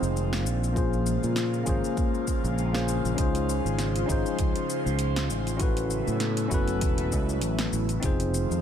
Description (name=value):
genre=sunset chillout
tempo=99 BPM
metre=4/4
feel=swing 56% on 16ths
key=Db major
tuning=A4 = 440 Hz
part: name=tine electric piano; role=accompaniment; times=0.0-8.6 s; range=Bb3 to C5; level=-30 LUFS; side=moving between left 4 dB and right 4 dB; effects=auto-pan, low-pass filter, digital delay
part: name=airy breathy pad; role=sustained chords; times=0.0-8.6 s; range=Db3 to C5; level=-32 LUFS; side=left 3 dB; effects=chorus, phaser
part: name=fingered electric bass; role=bass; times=0.0-8.6 s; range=E1 to Bb2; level=-28 LUFS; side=equal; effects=none
part: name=deep house drum kit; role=drums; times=0.0-8.6 s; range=hi-hat, shaker, snare drum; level=-34 LUFS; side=equal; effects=overdrive, small room reverb
part: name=electronic kick drum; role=drums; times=0.8-8.2 s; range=none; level=-28 LUFS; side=right 1 dB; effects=overdrive, small room reverb
room=light reverb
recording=none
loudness=-24 LUFS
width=side -9 dB against mid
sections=0.0-8.6 A section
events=filter sweep on tine electric piano 0.0-8.6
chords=0.0 Fm7; 0.8 Bbm7; 3.2 Dbmaj7; 5.6 A69; 8.0 Fm7